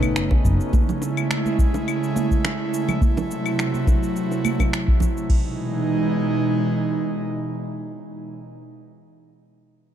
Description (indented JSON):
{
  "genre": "sunset chillout",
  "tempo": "105 BPM",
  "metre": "4/4",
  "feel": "swing 54% on 16ths",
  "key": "E major",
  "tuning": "A4 = 440 Hz",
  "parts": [
    { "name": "dark grand piano", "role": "accompaniment", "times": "0.0-0.8 s", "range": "A3 to B4", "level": "-30 LUFS", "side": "left 4 dB", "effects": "auto-pan, digital delay" },
    { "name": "airy breathy pad", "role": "sustained chords", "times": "0.0-8.3 s", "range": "B2 to E4", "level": "-23 LUFS", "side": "right 1 dB", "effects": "chorus, vintage 12-bit sampler grit" },
    { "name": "hollow-body short-scale fingered electric bass", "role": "bass", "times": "0.0-0.6 s", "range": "F#1 to B1", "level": "-21 LUFS", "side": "equal", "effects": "none" },
    { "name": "electronic claves, shaker and finger snaps", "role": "drums", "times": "0.0-5.3 s", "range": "none", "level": "-29 LUFS", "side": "left 2 dB", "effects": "overdrive" },
    { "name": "soft vintage rhythm box", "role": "drums", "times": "0.0-5.4 s", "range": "crash cymbal, kick drum", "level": "-19 LUFS", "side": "equal", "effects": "overdrive" },
    { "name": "bongos and congas", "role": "percussion", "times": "0.0-5.1 s", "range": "none", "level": "-28 LUFS", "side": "right 5 dB", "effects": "none" }
  ],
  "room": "light reverb, digital ambience",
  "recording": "dark, warm production",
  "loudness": "-19 LUFS",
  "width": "side -10 dB against mid",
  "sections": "0.0-5.3 A section; 5.3-7.6 B section",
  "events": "none",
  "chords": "0.0 B9; 0.7 Amaj7; 3.0 Am6/C; 5.3 Emaj7"
}